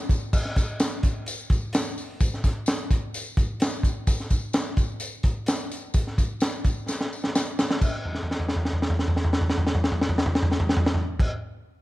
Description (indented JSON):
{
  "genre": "soul",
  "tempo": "128 BPM",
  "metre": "4/4",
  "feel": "straight",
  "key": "none",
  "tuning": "none",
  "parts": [
    { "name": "crunchy breakbeat drum kit", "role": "drums", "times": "0.1-11.3 s", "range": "crash cymbal, hi-hat, kick drum, snare drum, toms", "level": "-23 LUFS", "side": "equal", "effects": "none" },
    { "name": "tambourine", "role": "percussion", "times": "0.1-11.2 s", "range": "none", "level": "-37 LUFS", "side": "left 3 dB", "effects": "none" }
  ],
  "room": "little or no reverb",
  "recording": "dark, warm production",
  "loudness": "-23 LUFS",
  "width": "side -17 dB against mid",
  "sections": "0.3-7.8 A section; 7.8-11.6 B section",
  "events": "drum fill 6.9-7.8, 8.1-11.2",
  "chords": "none"
}